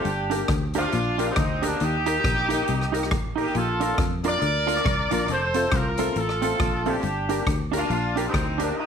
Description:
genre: ska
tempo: 138 BPM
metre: 4/4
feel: swing 61% on 8ths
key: unclear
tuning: A4 = 441 Hz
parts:
  - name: clear horn section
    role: melody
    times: 0.0-8.9 s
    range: Bb3 to D5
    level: -25 LUFS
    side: equal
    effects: slapback echo
  - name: electric guitar at the edge of break-up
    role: riff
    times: 0.0-8.5 s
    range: F2 to F3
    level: -32 LUFS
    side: left 9 dB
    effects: none
  - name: street-band drum kit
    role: drums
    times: 0.0-8.7 s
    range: hi-hat, kick drum, rim click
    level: -29 LUFS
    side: equal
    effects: none
  - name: fingered electric bass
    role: bass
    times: 0.1-8.7 s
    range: F1 to F2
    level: -29 LUFS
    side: equal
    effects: none
  - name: semi-hollow electric guitar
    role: accompaniment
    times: 0.3-8.7 s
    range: C4 to Bb4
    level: -29 LUFS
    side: right 11 dB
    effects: slapback echo
  - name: clear upright piano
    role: stabs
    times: 0.3-8.7 s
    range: A3 to Bb4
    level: -32 LUFS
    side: left 11 dB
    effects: none
room: light reverb, small room ambience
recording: 1960s-style stereo with parts hard left and right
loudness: -21 LUFS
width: side -7 dB against mid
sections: 0.0-8.9 A section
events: none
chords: 0.1 Gm; 1.8 Eb; 3.5 Bb; 5.3 F; 7.0 Gm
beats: | 0.05 0.49 0.93 1.36 | 1.80 2.24 2.67 3.11 | 3.54 3.98 4.42 4.85 | 5.29 5.72 6.16 6.59 | 7.03 7.46 7.90 8.33 | 8.77

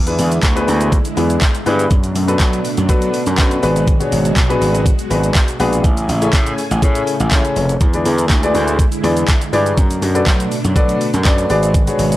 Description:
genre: dance-pop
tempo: 122 BPM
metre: 4/4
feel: straight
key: unclear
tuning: A4 = 443 Hz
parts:
  - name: string machine, cellos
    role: sustained chords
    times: 0.0-12.2 s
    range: B2 to G#5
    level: -24 LUFS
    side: right 1 dB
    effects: ensemble chorus, sidechain pumping
  - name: gritty slap bass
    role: bass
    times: 0.0-12.2 s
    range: E#1 to F#3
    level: -18 LUFS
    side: equal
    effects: overdrive, sidechain pumping
  - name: dark baby grand piano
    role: accompaniment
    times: 0.1-12.2 s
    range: B3 to D5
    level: -18 LUFS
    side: left 2 dB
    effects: sidechain pumping
  - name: smooth R&B drum kit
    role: drums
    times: 0.1-12.2 s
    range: handclaps, hi-hat, kick drum, shaker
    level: -16 LUFS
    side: equal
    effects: none
room: little or no reverb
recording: dry, gritty hardware recording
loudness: -13 LUFS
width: side -15 dB against mid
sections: 0.0-12.2 A section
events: none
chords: 0.0 E7; 1.9 Bm7; 3.6 G#m7b5; 5.8 Amaj7; 7.8 E7; 9.8 Bm7; 11.5 G#m7b5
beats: 0.43 0.92 1.42 | 1.91 2.40 2.89 3.38 | 3.88 4.37 4.86 5.35 | 5.84 6.33 6.83 7.32 | 7.81 8.30 8.79 9.28 | 9.78 10.27 10.76 11.25 | 11.74

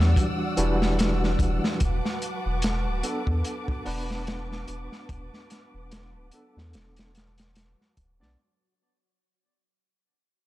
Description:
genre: trip hop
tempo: 73 BPM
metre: 4/4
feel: swing 56% on 16ths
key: unclear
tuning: A4 = 441 Hz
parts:
  - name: barky tine electric piano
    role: accompaniment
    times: 0.0-8.4 s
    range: E3 to D5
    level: -30 LUFS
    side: equal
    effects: tremolo, tape echo
  - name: dark symphonic violin section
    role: sustained chords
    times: 0.0-8.3 s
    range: B4 to E6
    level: -36 LUFS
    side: equal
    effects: vintage 12-bit sampler grit, low-pass filter
  - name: round analog bass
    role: bass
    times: 0.0-8.4 s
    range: D1 to E2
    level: -26 LUFS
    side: equal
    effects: none
  - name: crunchy breakbeat drum kit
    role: drums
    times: 0.0-8.4 s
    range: hi-hat, kick drum, snare drum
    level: -28 LUFS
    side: equal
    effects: none
  - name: wind-like tuned noise texture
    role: texture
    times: 0.0-8.4 s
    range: F#3 to F#4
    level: -39 LUFS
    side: equal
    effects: built-in reverb
room: little or no reverb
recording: dark, warm production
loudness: -24 LUFS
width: side -16 dB against mid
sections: 0.0-8.4 A section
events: fade-out 0.0-8.4; filter sweep on violin section 0.0-8.4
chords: 0.0 Em9; 1.8 Bm7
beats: 0.16 0.98 | 1.80 2.63 3.45 4.27 | 5.09 5.91 6.74 7.56

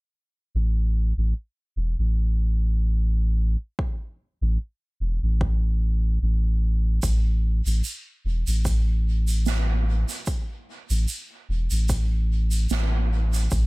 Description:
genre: ambient dub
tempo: 74 BPM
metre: 4/4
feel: swing 55% on 16ths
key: unclear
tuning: A4 = 439 Hz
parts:
  - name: soft dub sub bass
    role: bass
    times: 0.5-13.7 s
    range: E1 to A1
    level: -21 LUFS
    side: equal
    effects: none
  - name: electronic kick drum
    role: drums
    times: 3.8-13.7 s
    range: none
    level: -27 LUFS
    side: equal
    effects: studio reverb
  - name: shaker and snare drum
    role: drums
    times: 7.0-13.7 s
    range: none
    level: -32 LUFS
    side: right 4 dB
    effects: studio reverb, dub echo
room: little or no reverb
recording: none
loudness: -22 LUFS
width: side -24 dB against mid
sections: 0.5-7.0 A section; 7.0-13.7 B section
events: none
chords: none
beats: | 0.54 1.35 2.17 2.98 | 3.79 4.60 5.41 6.22 | 7.03 7.84 8.65 9.46 | 10.27 11.08 11.89 12.71 | 13.52

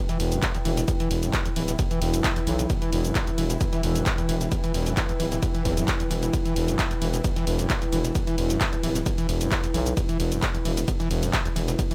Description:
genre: driving peak-time techno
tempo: 132 BPM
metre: 4/4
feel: straight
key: E minor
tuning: A4 = 440 Hz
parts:
  - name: swarming drone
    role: drone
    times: 0.3-11.9 s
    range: E3 to E4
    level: -37 LUFS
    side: equal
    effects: none
  - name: warbly tape-like pad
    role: texture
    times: 0.0-11.9 s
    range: E4 to G5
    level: -35 LUFS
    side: equal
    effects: chorus, built-in reverb, sidechain pumping
  - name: screaming distorted acid line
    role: riff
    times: 0.1-11.9 s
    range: E2 to E3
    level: -33 LUFS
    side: equal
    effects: distortion, chorus, sidechain pumping, tape echo
  - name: dusty soul sampler-style drum kit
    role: drums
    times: 0.1-11.9 s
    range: hi-hat, shaker, snare drum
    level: -43 LUFS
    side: equal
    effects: none
  - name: punchy analog drum machine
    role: drums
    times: 0.1-11.9 s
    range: handclaps, hi-hat, ride cymbal, shaker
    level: -33 LUFS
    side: equal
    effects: sidechain pumping on hats, sidechain pumping on perc, sidechain pumping on cymbals
  - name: growling FM bass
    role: bass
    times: 0.2-11.8 s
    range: D1 to B1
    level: -30 LUFS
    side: equal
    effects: sidechain pumping
  - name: electronic kick drum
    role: drums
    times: 0.4-11.9 s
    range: none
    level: -30 LUFS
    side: equal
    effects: none
room: little or no reverb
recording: none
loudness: -25 LUFS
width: mono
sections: 0.0-11.9 A section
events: none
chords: 0.0 Em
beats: 0.42 | 0.88 1.33 1.79 2.24 | 2.70 3.15 3.61 4.06 | 4.52 4.97 5.42 5.88 | 6.33 6.79 7.24 7.70 | 8.15 8.61 9.06 9.52 | 9.97 10.43 10.88 11.33 | 11.79

